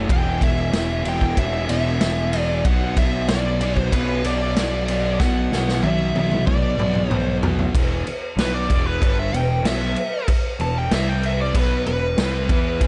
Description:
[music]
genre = hard rock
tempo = 94 BPM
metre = 4/4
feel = straight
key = E minor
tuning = A4 = 441 Hz
[part]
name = crunchy overdriven guitar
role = riff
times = 0.0-12.9 s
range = E2 to E4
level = -28 LUFS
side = equal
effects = none
[part]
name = fuzz picked electric bass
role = bass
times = 0.0-12.9 s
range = E1 to E2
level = -26 LUFS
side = equal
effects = overdrive
[part]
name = biting lead guitar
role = melody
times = 0.1-12.9 s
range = B4 to A5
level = -28 LUFS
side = equal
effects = overdrive, tape echo
[part]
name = raw garage drum kit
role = drums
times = 0.1-12.9 s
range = crash cymbal, kick drum, ride cymbal, snare drum, toms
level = -24 LUFS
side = equal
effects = none
[sound]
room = small room ambience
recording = nothing above 10.4 kHz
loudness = -21 LUFS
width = mono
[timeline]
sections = 0.0-7.7 A section; 7.7-12.9 B section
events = drum fill 5.2-7.7; lead electric guitar solo 7.7-12.9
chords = 0.1 E5; 2.7 Bm; 7.7 Em; 10.9 C5; 11.5 Em

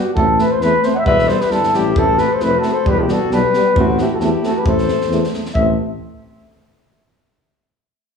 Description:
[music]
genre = balkan folk, Balkan brass band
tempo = 134 BPM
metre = 2/4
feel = swing 56% on 16ths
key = A minor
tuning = A4 = 440 Hz
[part]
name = breathy flugelhorn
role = melody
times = 0.0-5.8 s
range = F#4 to F#5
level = -17 LUFS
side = left 2 dB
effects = slapback echo
[part]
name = dark euphonium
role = accompaniment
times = 0.0-5.8 s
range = B3 to C4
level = -26 LUFS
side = left 6 dB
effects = slapback echo
[part]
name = warm euphonium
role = accompaniment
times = 0.0-5.8 s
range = G3 to A3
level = -22 LUFS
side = right 5 dB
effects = slapback echo
[part]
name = mellow tuba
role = bass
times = 0.1-5.8 s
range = E1 to E2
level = -20 LUFS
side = equal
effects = none
[part]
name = compact cocktail drum kit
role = percussion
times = 0.2-5.8 s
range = kick drum, snare drum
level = -23 LUFS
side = equal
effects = none
[part]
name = clear alto saxophone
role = second line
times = 1.1-5.8 s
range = C4 to B4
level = -24 LUFS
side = left 4 dB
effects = slapback echo
[sound]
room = light reverb, small room ambience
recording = live gig heard through the venue's PA, club reverb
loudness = -13 LUFS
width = side -6 dB against mid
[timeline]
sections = 0.0-5.5 A section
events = none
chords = 0.2 Am; 1.1 Em; 2.0 Am; 2.9 Em; 3.8 Am

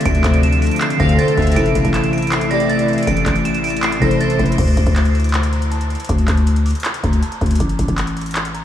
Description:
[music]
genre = hip hop, trap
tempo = 159 BPM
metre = 4/4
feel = half-time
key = D minor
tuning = A4 = 440 Hz
[part]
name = metallic FM bell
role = melody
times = 0.0-8.6 s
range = A5 to E7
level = -24 LUFS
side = right 4 dB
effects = chorus, low-pass filter, tape echo
[part]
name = glassy digital keys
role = accompaniment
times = 0.0-4.6 s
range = C3 to C5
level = -22 LUFS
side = equal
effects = chorus, low-pass filter
[part]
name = sweeping resonant pad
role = sustained chords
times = 0.0-4.6 s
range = C3 to E4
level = -23 LUFS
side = left 2 dB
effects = chorus
[part]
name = booming analog drum machine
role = drums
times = 0.0-8.6 s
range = crash cymbal, handclaps, hi-hat, kick drum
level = -21 LUFS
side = equal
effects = none
[part]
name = growling 808-style bass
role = bass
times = 0.1-8.6 s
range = A1 to D2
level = -17 LUFS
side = left 1 dB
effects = none
[part]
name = warm studio violin section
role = second line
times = 1.0-4.5 s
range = C5 to F5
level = -26 LUFS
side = right 1 dB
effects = tape echo
[sound]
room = moderate huge ambient reverb, RT60 7.5 s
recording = dreamy mix soaked in reverb, vinyl crackle, small room ambience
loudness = -14 LUFS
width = side -11 dB against mid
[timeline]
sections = 0.0-4.6 A section; 4.6-8.6 B section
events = filter sweep 4.6-8.6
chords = 0.0 Dm7; 1.6 Am; 4.6 D5; 7.6 Asus4

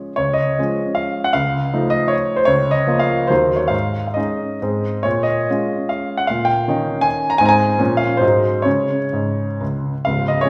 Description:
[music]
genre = classical, romantic triple-time dance for piano with dotted rhythms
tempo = 120-168 BPM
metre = 3/4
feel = rubato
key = Db major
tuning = A4 = 440 Hz
[part]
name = clear grand piano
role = solo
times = 0.0-10.5 s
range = Db1 to Bb5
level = -18 LUFS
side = equal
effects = none
[sound]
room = wet recital hall reverb, RT60 1.3 s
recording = recorded in a church or concert hall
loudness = -18 LUFS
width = mono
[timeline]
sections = 0.2-10.1 A section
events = none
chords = 0.2 Db; 1.4 F7/Db; 2.5 Bbm/Db; 3.3 Ebm; 3.7 Absus4; 4.6 Ab; 5.1 Bbm7; 6.3 Eb7/Bb; 7.4 Ab; 7.8 Bbm; 8.2 Ab7; 8.7 Db5

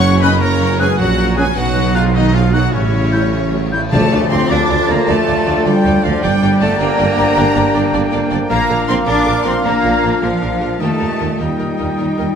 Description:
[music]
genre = cinematic, heroic adventure film score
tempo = 104 BPM (dotted quarters)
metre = 12/8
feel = straight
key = D phrygian from 3.9 s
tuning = A4 = 441 Hz
[part]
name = warm symphonic violin section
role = melody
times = 0.0-12.3 s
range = C#5 to Db6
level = -26 LUFS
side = left 4 dB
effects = none
[part]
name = clear oboe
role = second line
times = 0.0-12.4 s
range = C#4 to A5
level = -26 LUFS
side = equal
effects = none
[part]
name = warm symphonic violin section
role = second line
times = 0.0-12.4 s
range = E4 to D6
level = -26 LUFS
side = left 4 dB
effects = none
[part]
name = warm symphonic viola section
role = accompaniment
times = 0.0-12.3 s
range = Gb3 to D5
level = -25 LUFS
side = equal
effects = none
[part]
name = mellow French horn section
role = sustained chords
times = 0.0-12.4 s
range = C#3 to A4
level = -24 LUFS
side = left 4 dB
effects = none
[part]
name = concert harp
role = arpeggios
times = 0.0-12.4 s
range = Gb2 to D6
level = -27 LUFS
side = left 8 dB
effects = none
[part]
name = mellow trumpet section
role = stabs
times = 0.0-12.4 s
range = C#4 to F5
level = -24 LUFS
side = right 1 dB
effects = none
[part]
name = dark tuba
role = bass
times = 0.0-12.3 s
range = Gb1 to Eb2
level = -21 LUFS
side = right 4 dB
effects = none
[part]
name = rich symphonic double bass section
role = bass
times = 0.0-12.3 s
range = Gb1 to Eb2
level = -22 LUFS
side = right 3 dB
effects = none
[part]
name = warm studio cello section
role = bass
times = 0.0-12.4 s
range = Gb2 to D4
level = -19 LUFS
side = right 2 dB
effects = none
[part]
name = mellow clarinet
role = second line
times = 0.2-12.4 s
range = Db4 to F4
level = -24 LUFS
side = left 1 dB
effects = none
[part]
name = silver concert flute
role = second line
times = 0.2-12.4 s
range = F5 to G6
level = -24 LUFS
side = left 3 dB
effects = none
[part]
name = clear trombone section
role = sustained chords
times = 0.2-12.4 s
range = Bb2 to E4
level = -25 LUFS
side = right 2 dB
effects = none
[part]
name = cymbal swell and tam-tam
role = percussion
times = 1.6-5.4 s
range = none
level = -26 LUFS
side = left 4 dB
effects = none
[part]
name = timpani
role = percussion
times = 3.9-4.5 s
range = D3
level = -20 LUFS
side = left 1 dB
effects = none
[sound]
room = moderate scoring stage reverb, RT60 1.6 s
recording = none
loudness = -12 LUFS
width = side -7 dB against mid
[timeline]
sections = 0.0-3.9 A section; 3.9-12.4 B section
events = band accent 3.9-4.3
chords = 0.0 Gb; 1.6 B; 2.7 A7; 3.9 Dm; 6.2 Gm; 8.5 Bb; 10.8 Eb

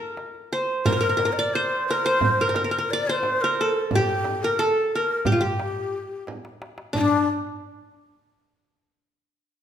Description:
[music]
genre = Turkish makam ensemble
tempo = 178 BPM (eighths)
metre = 9/8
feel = straight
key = unclear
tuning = A4 = 437 Hz
[part]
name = qanun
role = melody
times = 0.0-7.3 s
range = D4 to D5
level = -23 LUFS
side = right 1 dB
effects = none
[part]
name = darbuka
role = percussion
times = 0.2-7.3 s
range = none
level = -32 LUFS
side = left 2 dB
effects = none
[part]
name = breathy ney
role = second line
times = 0.9-7.3 s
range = D4 to Eb5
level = -26 LUFS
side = left 5 dB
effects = none
[part]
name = frame drum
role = percussion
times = 0.9-7.3 s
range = none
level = -29 LUFS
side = right 3 dB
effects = none
[sound]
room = wet recital hall reverb, RT60 1.5 s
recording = minimal, uncompressed stereo recording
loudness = -20 LUFS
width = side -9 dB against mid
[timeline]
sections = 0.0-7.0 A section; 7.0-9.6 B section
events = drum fill 6.3-7.0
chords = none

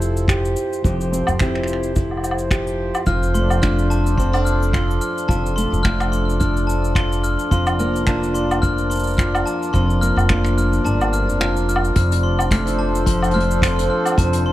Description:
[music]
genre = folktronica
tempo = 108 BPM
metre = 4/4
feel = swing 56% on 16ths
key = F major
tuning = A4 = 440 Hz
[part]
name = hand-pumped harmonium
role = sustained chords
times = 0.0-14.5 s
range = F3 to D5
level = -26 LUFS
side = left 1 dB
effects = none
[part]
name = fingerpicked steel-string acoustic guitar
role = arpeggios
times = 0.0-14.5 s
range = F2 to G4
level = -23 LUFS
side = right 1 dB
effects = vintage 12-bit sampler grit, low-pass filter, ping-pong delay
[part]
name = upright bass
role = bass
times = 0.0-14.5 s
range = F1 to G1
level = -21 LUFS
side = equal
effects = none
[part]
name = vintage brush drum kit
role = drums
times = 0.0-14.4 s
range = cabasa, finger snaps, hi-hat, woodblock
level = -25 LUFS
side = equal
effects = none
[part]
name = kick drum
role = drums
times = 0.3-14.3 s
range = none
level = -20 LUFS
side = equal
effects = none
[part]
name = glockenspiel with brass mallets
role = second line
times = 3.1-14.5 s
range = A5 to F6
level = -25 LUFS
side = left 2 dB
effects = ping-pong delay
[sound]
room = small room ambience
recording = none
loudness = -16 LUFS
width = side -15 dB against mid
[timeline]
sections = 0.0-12.0 A section; 12.0-14.5 B section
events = break 10.8-12.0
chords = 0.0 C/F; 3.1 Dm/F; 7.5 Bb/F; 12.0 F

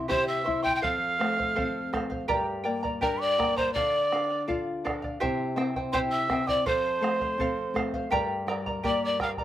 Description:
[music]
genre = andean folk, Andean ensemble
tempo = 82 BPM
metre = 2/4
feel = straight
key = unclear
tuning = A4 = 439 Hz
[part]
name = charango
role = accompaniment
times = 0.0-9.4 s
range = E4 to C6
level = -30 LUFS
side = right 2 dB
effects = slapback echo
[part]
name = nylon-string guitar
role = accompaniment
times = 0.0-9.4 s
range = F2 to G4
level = -33 LUFS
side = left 3 dB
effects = slapback echo
[part]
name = breathy pan flute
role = melody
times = 0.1-9.3 s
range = Bb4 to G5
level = -28 LUFS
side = left 1 dB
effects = none
[part]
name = quena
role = second line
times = 0.1-9.3 s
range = Bb5 to G6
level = -31 LUFS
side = right 4 dB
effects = slapback echo
[part]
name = bombo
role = percussion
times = 0.1-9.4 s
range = none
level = -36 LUFS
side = right 2 dB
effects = none
[sound]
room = little or no reverb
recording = recorded outdoors, with no room sound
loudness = -25 LUFS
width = side -12 dB against mid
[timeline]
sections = 0.0-5.2 A section; 5.2-9.4 A section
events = none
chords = 0.0 C; 0.8 F; 2.3 Gm; 3.7 Dm; 5.2 C; 6.7 F; 8.1 Gm

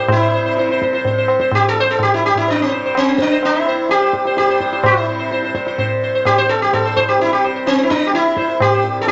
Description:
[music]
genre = indian classical, Hindustani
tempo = 127 BPM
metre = 5/4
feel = straight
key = unclear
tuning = A4 = 438 Hz
[part]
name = sitar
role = melody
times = 0.0-9.1 s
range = C4 to C5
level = -17 LUFS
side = equal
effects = none
[part]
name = tanpura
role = drone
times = 0.0-9.1 s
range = C2 to C3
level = -29 LUFS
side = equal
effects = none
[part]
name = tabla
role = percussion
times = 0.1-9.1 s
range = none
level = -24 LUFS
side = equal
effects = none
[sound]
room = moderate studio reverb, RT60 0.6 s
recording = nothing above 7.7 kHz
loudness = -16 LUFS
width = mono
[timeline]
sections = 0.0-9.1 A section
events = none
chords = none

